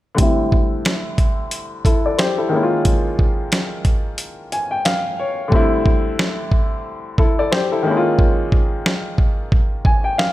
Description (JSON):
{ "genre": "hip hop, boom-bap hip-hop", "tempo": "90 BPM", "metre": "4/4", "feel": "swing 57% on 16ths", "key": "unclear", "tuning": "A4 = 440 Hz", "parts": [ { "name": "warm upright piano", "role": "accompaniment", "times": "0.1-10.3 s", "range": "D3 to Ab5", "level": "-20 LUFS", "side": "left 2 dB", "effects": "high-pass filter, low-pass filter" }, { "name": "dusty soul sampler-style drum kit", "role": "drums", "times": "0.2-10.3 s", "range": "hi-hat, kick drum, snare drum", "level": "-17 LUFS", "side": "equal", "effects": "none" } ], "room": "light reverb", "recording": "none", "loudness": "-16 LUFS", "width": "side -15 dB against mid", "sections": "0.2-5.5 A section; 5.5-10.3 B section", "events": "filter sweep on upright piano 0.2-5.5; break 4.2-5.5; upright piano fill 4.2-5.5; hi-hats muted 5.5-10.3", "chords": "0.2 D9sus4; 2.5 Eb9sus4; 5.5 D9sus4; 7.9 Eb9sus4" }